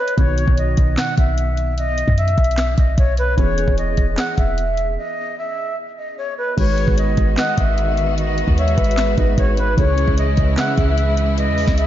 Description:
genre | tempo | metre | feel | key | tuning
hip hop, trap | 150 BPM | 4/4 | half-time | G# minor | A4 = 440 Hz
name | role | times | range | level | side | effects
mellow silver concert flute | melody | 0.0-11.9 s | B4 to F#5 | -22 LUFS | left 1 dB | low-pass filter, diffuse ambient delay
trap drum kit | drums | 0.1-11.9 s | crash cymbal, handclaps, hi-hat, kick drum, snare drum | -20 LUFS | equal | none
dark baby grand piano | accompaniment | 0.2-11.9 s | B2 to B4 | -26 LUFS | right 2 dB | ensemble chorus, low-pass filter
clean 808-style bass | bass | 0.2-11.9 s | E1 to F#2 | -19 LUFS | equal | none
breathy flute-like synth lead | second line | 6.6-11.9 s | B4 to E5 | -28 LUFS | left 1 dB | chorus, tremolo, diffuse ambient delay
clear studio string section | sustained chords | 6.6-11.9 s | C#3 to F#4 | -24 LUFS | right 2 dB | none
room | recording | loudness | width
moderate lush hall reverb, RT60 1.8 s, small room ambience | dreamy mix soaked in reverb, nothing above 7.5 kHz | -15 LUFS | side -12 dB against mid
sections
0.0-6.6 A section; 6.6-11.9 B section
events
break 0.0, 5.0-6.6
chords
0.2 B; 3.4 E6; 6.6 G#m7; 9.8 C#m

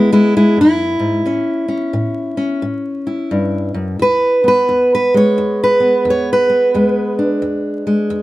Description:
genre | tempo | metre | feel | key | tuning
acoustic country blues, solo or duo | 88 BPM | 4/4 | swing 63% on 8ths | E mixolydian | A4 = 441 Hz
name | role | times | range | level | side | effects
fingerpicked steel-string acoustic guitar | solo | 0.0-8.2 s | E2 to C#5 | -12 LUFS | equal | none
room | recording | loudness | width
light reverb | vinyl crackle | -13 LUFS | side -17 dB against mid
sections
0.0-8.2 A section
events
steel-string acoustic guitar solo 0.0-8.2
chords
0.0 E; 1.3 A7; 4.0 E7

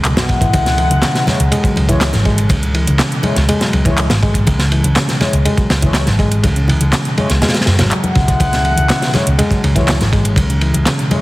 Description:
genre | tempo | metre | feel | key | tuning
breakbeat, breaks | 122 BPM | 4/4 | straight | unclear | A4 = 440 Hz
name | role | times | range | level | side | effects
reed electric piano | riff | 0.0-11.2 s | B2 to G#3 | -18 LUFS | equal | none
hollow-body short-scale picked electric bass | bass | 0.0-10.8 s | G#1 to F#2 | -16 LUFS | equal | none
crunchy breakbeat drum kit | drums | 0.0-11.2 s | kick drum, ride cymbal, snare drum | -17 LUFS | equal | none
garage drum kit | drums | 0.0-11.1 s | handclaps, hi-hat | -22 LUFS | equal | none
warm brass ensemble | stabs | 0.2-11.2 s | G#3 to F#5 | -22 LUFS | left 2 dB | vintage 12-bit sampler grit, ping-pong delay
congas | percussion | 0.2-11.2 s | none | -22 LUFS | left 1 dB | none
room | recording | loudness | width
light reverb, small room ambience | heavily compressed radio sound, multiband compression | -11 LUFS | side -18 dB against mid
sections
0.0-11.2 A section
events
none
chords
0.0 C#m

